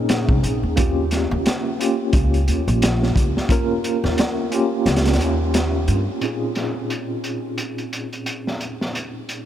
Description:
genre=trip hop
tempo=88 BPM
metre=4/4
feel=swing 59% on 16ths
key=Bb dorian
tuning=A4 = 438 Hz
part: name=mellow tine electric piano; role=accompaniment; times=0.0-9.5 s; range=Bb2 to Bb4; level=-23 LUFS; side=equal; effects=medium stereo tremolo, tape echo
part: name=upright bass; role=bass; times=0.0-6.1 s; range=Bb1 to Bb2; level=-20 LUFS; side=equal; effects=tube saturation
part: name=crunchy breakbeat drum kit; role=drums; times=0.1-9.5 s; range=hi-hat, kick drum, snare drum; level=-22 LUFS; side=equal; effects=low-pass filter on kick, vintage 12-bit sampler grit, low-pass filter on hats, low-pass filter on snare, low-pass filter on room
room=moderate huge ambient reverb, RT60 7.4 s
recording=dreamy mix soaked in reverb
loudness=-18 LUFS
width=side -11 dB against mid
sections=0.0-6.2 A section; 6.2-9.5 B section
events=kick drops out 4.9-6.2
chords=0.0 Bbm11; 0.8 Eb7; 6.2 Bbm11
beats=0.08 | 0.77 1.45 2.13 2.81 | 3.49 4.17 4.86 5.54 | 6.22 6.90 7.58 8.27 | 8.95

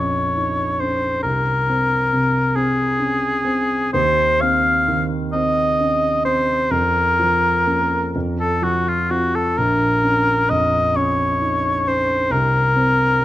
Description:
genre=classical, romantic duo for oboe and grand piano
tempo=43 BPM (dotted quarters)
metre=6/8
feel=uneven beats, rubato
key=Bb minor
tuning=A4 = 440 Hz
part: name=warm oboe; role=melody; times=0.0-13.2 s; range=F4 to F5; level=-18 LUFS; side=left 1 dB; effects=none
part: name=dark baby grand piano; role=accompaniment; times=0.0-13.2 s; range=Bb1 to F4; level=-21 LUFS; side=equal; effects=none
room=moderate recital hall reverb, RT60 1.9 s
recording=close, detailed microphones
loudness=-16 LUFS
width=side -14 dB against mid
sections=0.0-13.2 A section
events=none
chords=0.0 Bbm; 1.2 Ab/C; 3.9 Dbmaj9/Eb; 6.7 Bbm/F; 8.1 F5; 9.6 Bbm; 12.3 N.C.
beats=| 1.24 2.56 | 3.94 5.34 | 6.72 8.15 | 9.57 10.96 | 12.32

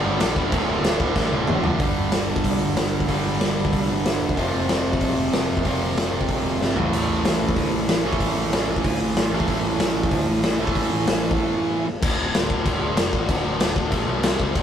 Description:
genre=punk rock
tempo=188 BPM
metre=4/4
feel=straight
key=D minor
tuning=A4 = 442 Hz
part: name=distorted electric guitar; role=riff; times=0.0-14.6 s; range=D2 to C4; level=-28 LUFS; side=left 6 dB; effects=overdrive
part: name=distorted electric guitar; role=riff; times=0.0-11.9 s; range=D2 to A3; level=-24 LUFS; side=right 5 dB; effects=overdrive
part: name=modern bright picked electric bass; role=bass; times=0.0-14.6 s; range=D1 to D2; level=-29 LUFS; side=equal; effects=none
part: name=raw garage drum kit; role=drums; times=0.2-14.6 s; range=crash cymbal, hi-hat, kick drum, snare drum, toms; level=-22 LUFS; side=equal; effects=none
room=light reverb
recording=rough rehearsal-room recording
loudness=-19 LUFS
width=side -9 dB against mid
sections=0.0-1.8 A section; 1.8-12.0 B section; 12.0-14.6 A section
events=drum fill 1.2-1.8, 6.6-6.9; break 11.4-12.0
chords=0.0 Gm; 0.5 D5; 1.8 G5; 4.4 F5; 6.8 A5; 12.0 D5; 13.9 A5; 14.2 C5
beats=0.20 | 0.52 0.84 1.16 1.48 | 1.80 2.12 2.44 2.76 | 3.08 3.40 3.72 4.04 | 4.37 4.69 5.01 5.33 | 5.65 5.97 6.29 6.61 | 6.93 7.25 7.57 7.89 | 8.21 8.53 8.84 9.16 | 9.48 9.80 10.12 10.44 | 10.75 11.07 11.39 11.71 | 12.02 12.34 12.65 12.97 | 13.29 13.60 13.92 14.23 | 14.55

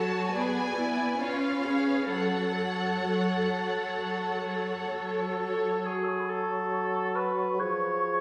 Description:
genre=classical, slow romantic movement for symphony orchestra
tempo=62-72 BPM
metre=4/4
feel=rubato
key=F# minor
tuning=A4 = 440 Hz
part: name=clear symphonic violin section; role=melody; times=0.0-4.9 s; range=E#5 to A5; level=-37 LUFS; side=equal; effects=none
part: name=warm symphonic violin section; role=second line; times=0.0-5.9 s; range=A4 to D5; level=-36 LUFS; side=equal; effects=none
part: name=rich studio viola section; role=accompaniment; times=0.0-5.7 s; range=F#3 to C#4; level=-34 LUFS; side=equal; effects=none
part: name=rich symphonic cello section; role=bass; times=0.0-5.4 s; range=E4 to A4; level=-36 LUFS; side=equal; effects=none
part: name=mellow oboe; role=second line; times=4.9-8.2 s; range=G#4 to C#5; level=-32 LUFS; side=equal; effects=none
part: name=mellow clarinet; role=second line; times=5.9-8.2 s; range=F#4 to G#4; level=-38 LUFS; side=equal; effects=none
part: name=mellow hollow wooden flute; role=second line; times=5.9-8.2 s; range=B5 to E6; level=-38 LUFS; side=equal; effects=none
part: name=mellow bassoon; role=accompaniment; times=5.9-8.2 s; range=E#3 to F#3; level=-35 LUFS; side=equal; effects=none
room=wet scoring stage reverb, RT60 1.9 s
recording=recorded in a church or concert hall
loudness=-29 LUFS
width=mono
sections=0.0-5.9 A section; 5.9-8.2 B section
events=none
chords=0.3 G#dim/B; 1.2 C#7; 2.1 F#m; 7.6 C#/E#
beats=0.34 1.20 | 2.09 3.03 3.98 4.92 | 5.85 6.73 7.60

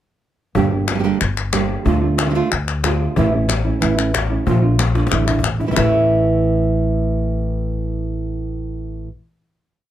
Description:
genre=flamenco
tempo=184 BPM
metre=4/4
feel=straight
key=A phrygian dominant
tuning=A4 = 439 Hz
part: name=nylon-string guitar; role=accompaniment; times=0.5-9.1 s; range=A2 to G4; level=-19 LUFS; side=right 4 dB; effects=none
part: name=cajon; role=percussion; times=0.5-5.8 s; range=none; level=-25 LUFS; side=left 4 dB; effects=none
part: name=upright bass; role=bass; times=0.6-9.0 s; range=G1 to D2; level=-20 LUFS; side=left 1 dB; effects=none
part: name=palmas hand claps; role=percussion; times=0.9-5.8 s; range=none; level=-23 LUFS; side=left 8 dB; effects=none
room=light reverb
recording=close, detailed microphones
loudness=-16 LUFS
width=side -11 dB against mid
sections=0.6-5.8 groove; 5.8-8.4 final chord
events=drum fill 5.0-5.8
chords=0.6 Gm; 1.9 Dm; 3.2 A; 4.5 Bb; 5.1 Asus4; 5.8 A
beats=| 0.55 0.88 1.21 1.53 | 1.86 2.19 2.51 2.84 | 3.16 3.49 3.81 4.14 | 4.47 4.79 5.12 5.44 | 5.77 6.09 6.42 6.74 | 7.07 7.39 7.72 8.05

